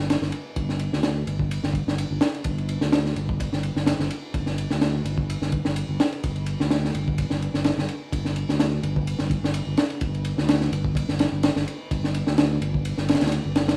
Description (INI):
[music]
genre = breakbeat, breaks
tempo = 127 BPM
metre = 4/4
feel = swing 54% on 16ths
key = unclear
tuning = A4 = 439 Hz
[part]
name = fingered electric bass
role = bass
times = 0.0-13.7 s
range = G1 to D2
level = -28 LUFS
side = equal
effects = tube saturation
[part]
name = crunchy breakbeat drum kit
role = drums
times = 0.1-13.8 s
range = kick drum, ride cymbal, snare drum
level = -27 LUFS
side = equal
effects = none
[sound]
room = light reverb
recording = vinyl crackle, small room ambience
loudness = -25 LUFS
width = mono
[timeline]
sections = 0.0-13.8 A section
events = none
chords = none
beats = 0.09 | 0.56 1.03 1.51 1.98 | 2.45 2.92 3.40 3.87 | 4.34 4.82 5.29 5.76 | 6.23 6.71 7.18 7.65 | 8.12 8.59 9.07 9.54 | 10.01 10.48 10.96 11.43 | 11.90 12.37 12.85 13.32